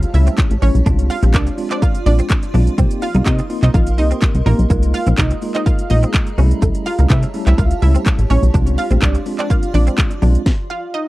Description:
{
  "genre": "dance-pop",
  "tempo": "125 BPM",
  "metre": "4/4",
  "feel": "straight",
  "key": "unclear",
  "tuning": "A4 = 440 Hz",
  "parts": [
    { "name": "analog pluck", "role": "melody", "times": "0.0-11.0 s", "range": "Bb3 to F5", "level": "-23 LUFS", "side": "right 2 dB", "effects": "chorus, sidechain pumping, tape echo" },
    { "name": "bell-like tine electric piano", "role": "accompaniment", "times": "0.0-10.4 s", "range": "G3 to G4", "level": "-24 LUFS", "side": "left 1 dB", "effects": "medium stereo tremolo, sidechain pumping" },
    { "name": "granular cloud pad", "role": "sustained chords", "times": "0.0-10.4 s", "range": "F4 to C6", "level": "-31 LUFS", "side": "right 2 dB", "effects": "built-in reverb, sidechain pumping" },
    { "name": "plucky analog bass", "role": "bass", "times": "0.0-10.4 s", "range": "A1 to C3", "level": "-13 LUFS", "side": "equal", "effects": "sidechain pumping" },
    { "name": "house drum kit", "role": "drums", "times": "0.0-10.6 s", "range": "handclaps, hi-hat, kick drum, shaker, snare drum", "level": "-17 LUFS", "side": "equal", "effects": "none" },
    { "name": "downlifter", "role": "sound effects", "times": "0.0-0.9 s", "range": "none", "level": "barely audible", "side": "none", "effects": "none" },
    { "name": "direct-recorded clean electric guitar", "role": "riff", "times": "0.1-10.3 s", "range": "A3 to Eb4", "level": "-29 LUFS", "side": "right 4 dB", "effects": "ensemble chorus" },
    { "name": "group handclap", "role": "percussion", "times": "0.4-10.1 s", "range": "none", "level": "-34 LUFS", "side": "left 8 dB", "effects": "none" }
  ],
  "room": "little or no reverb",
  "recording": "dry, close 1970s-style studio recording",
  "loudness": "-13 LUFS",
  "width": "side -18 dB against mid",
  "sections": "0.0-11.1 A section",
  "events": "stop 10.5-11.1",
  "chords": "0.0 A7; 0.9 Dm7b5; 2.8 Cm7; 4.7 Bb7sus4; 6.4 A7/C; 8.5 Dm7b5; 10.5 Bbsus4 (rootless)"
}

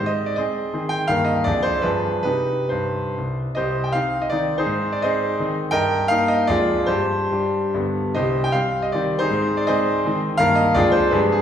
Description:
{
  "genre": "classical, romantic triple-time dance for piano with dotted rhythms",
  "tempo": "126-180 BPM",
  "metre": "3/4",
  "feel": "rubato",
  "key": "C minor",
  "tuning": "A4 = 440 Hz",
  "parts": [
    { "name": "bright concert grand piano", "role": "solo", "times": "0.0-11.4 s", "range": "C2 to G5", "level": "-18 LUFS", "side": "equal", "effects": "none" }
  ],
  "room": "wet recital hall reverb, RT60 1.7 s",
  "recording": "recorded in a church or concert hall",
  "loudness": "-18 LUFS",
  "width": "side -9 dB against mid",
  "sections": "0.0-3.6 A section; 3.6-11.4 A section",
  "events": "none",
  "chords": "0.0 Ab; 1.1 Eb/G; 1.5 Ddim/F; 1.9 G7b9; 2.3 Cm; 4.7 Ab; 5.7 Eb/G; 6.5 Ddim/F; 6.9 Gsus4; 7.7 G; 8.1 Cm; 9.3 Ab; 10.4 Eb/G; 10.8 Ddim/F"
}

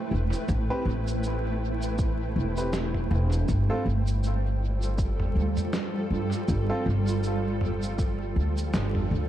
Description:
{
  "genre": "ambient dub",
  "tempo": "80 BPM",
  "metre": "4/4",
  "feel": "swing 57% on 16ths",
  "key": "unclear",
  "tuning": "A4 = 440 Hz",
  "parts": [
    { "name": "granular cloud pad", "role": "sustained chords", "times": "0.0-9.3 s", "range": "G3 to G5", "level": "-31 LUFS", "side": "right 1 dB", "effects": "built-in reverb" },
    { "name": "upright bass", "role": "bass", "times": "0.1-9.3 s", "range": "E1 to G2", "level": "-26 LUFS", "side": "equal", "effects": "none" },
    { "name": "lo-fi sampler-style drum kit", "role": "drums", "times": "0.3-9.1 s", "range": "cabasa, snare drum, toms", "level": "-34 LUFS", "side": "equal", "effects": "dub echo" },
    { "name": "electronic kick drum", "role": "drums", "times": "0.5-8.2 s", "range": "none", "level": "-28 LUFS", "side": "equal", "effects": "overdrive" },
    { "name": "warm upright piano", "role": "stabs", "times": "0.7-6.8 s", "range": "C4 to B4", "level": "-36 LUFS", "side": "equal", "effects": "dub echo" }
  ],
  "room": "little or no reverb",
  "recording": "dark, warm production, vinyl crackle",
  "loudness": "-24 LUFS",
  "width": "side -12 dB against mid",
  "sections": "0.0-9.3 A section",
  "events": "band accent 8.7-9.1",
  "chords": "0.0 Am7; 3.5 G7sus4"
}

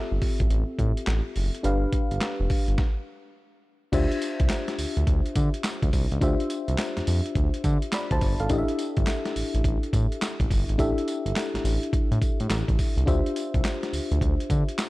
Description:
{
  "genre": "R&B, new jack swing",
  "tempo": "105 BPM",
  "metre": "4/4",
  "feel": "swing 65% on 16ths",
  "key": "D dorian",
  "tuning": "A4 = 439 Hz",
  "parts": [
    { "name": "FM electric piano with auto-pan", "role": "accompaniment", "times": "0.0-14.9 s", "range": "C4 to B5", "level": "-29 LUFS", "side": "left 2 dB", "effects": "none" },
    { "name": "smooth synth bass", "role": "bass", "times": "0.1-14.6 s", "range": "F1 to D3", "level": "-25 LUFS", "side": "equal", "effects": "none" },
    { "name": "boom bap sampler-style drum kit", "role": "drums", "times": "0.2-14.9 s", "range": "crash cymbal, handclaps, hi-hat, kick drum, snare drum, tambourine", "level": "-26 LUFS", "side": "equal", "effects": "overdrive" }
  ],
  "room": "little or no reverb",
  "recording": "dark, warm production",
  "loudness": "-23 LUFS",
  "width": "side -19 dB against mid",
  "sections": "0.0-3.9 A section; 3.9-14.9 B section",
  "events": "stop 2.8-3.9",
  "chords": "0.0 Am7; 1.6 G7; 3.9 Dm11; 8.5 A7sus4; 13.1 Dm11"
}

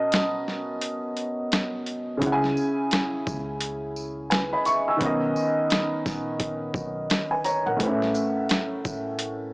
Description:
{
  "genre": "hip hop, boom-bap hip-hop",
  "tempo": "86 BPM",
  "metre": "4/4",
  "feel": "swing 61% on 16ths",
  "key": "B major",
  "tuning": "A4 = 440 Hz",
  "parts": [
    { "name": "dark grand piano", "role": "accompaniment", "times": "0.0-9.5 s", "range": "A2 to E6", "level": "-24 LUFS", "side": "equal", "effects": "cassette tape" },
    { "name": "boom bap sampler-style drum kit", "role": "drums", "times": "0.1-9.4 s", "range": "hi-hat, kick drum, shaker, snare drum", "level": "-26 LUFS", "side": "equal", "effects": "overdrive" },
    { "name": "upright bass", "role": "bass", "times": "2.2-9.5 s", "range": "A1 to C#2", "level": "-37 LUFS", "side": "equal", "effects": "tube saturation" },
    { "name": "tambourine", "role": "percussion", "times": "2.6-9.0 s", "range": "none", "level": "-41 LUFS", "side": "equal", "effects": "none" }
  ],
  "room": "light reverb, small room ambience",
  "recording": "dry, gritty hardware recording, transformer saturation, small speaker sound",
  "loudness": "-23 LUFS",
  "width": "side -26 dB against mid",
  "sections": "0.0-9.5 A section",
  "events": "break 0.0-2.2",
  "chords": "0.0 Bmaj7; 2.2 C#m; 5.0 Bmaj7; 7.8 Aadd9"
}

